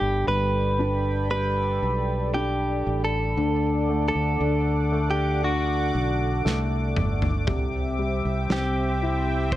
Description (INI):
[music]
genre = pop ballad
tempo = 58 BPM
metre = 4/4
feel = straight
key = G major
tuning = A4 = 440 Hz
[part]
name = direct-recorded clean electric guitar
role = melody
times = 0.0-9.6 s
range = F#4 to C5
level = -27 LUFS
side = right 1 dB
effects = ping-pong delay
[part]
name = warm grand piano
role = accompaniment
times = 0.0-9.6 s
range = C3 to E4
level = -28 LUFS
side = left 3 dB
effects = none
[part]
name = sweeping resonant pad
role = sustained chords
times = 0.0-9.6 s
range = C4 to D6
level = -32 LUFS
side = right 1 dB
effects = chorus
[part]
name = fingered electric bass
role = bass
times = 0.0-9.6 s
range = G1 to D2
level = -26 LUFS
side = right 1 dB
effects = none
[part]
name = loose indie drum kit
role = drums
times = 6.5-9.6 s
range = kick drum, snare drum, toms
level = -27 LUFS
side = equal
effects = none
[sound]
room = light reverb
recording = none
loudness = -22 LUFS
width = side -14 dB against mid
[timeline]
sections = 0.0-9.6 A section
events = drum fill 6.5-7.5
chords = 0.0 Gadd9; 3.4 D; 7.5 Cadd9